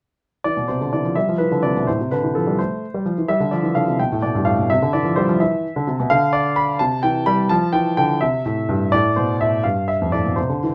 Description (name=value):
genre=classical-period piano sonatina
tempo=85 BPM (dotted quarters)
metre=6/8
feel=straight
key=C major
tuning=A4 = 436 Hz
part: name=clear grand piano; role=solo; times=0.4-10.7 s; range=F2 to B5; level=-19 LUFS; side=equal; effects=none
room=light reverb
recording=none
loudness=-19 LUFS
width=mono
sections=0.5-10.7 A section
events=none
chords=0.5 C; 1.2 Em; 1.9 F/A; 3.3 G5; 4.0 G; 4.7 C; 6.1 N.C.; 6.8 C; 7.5 Dmadd11; 8.2 C; 8.9 Amadd9; 9.6 G7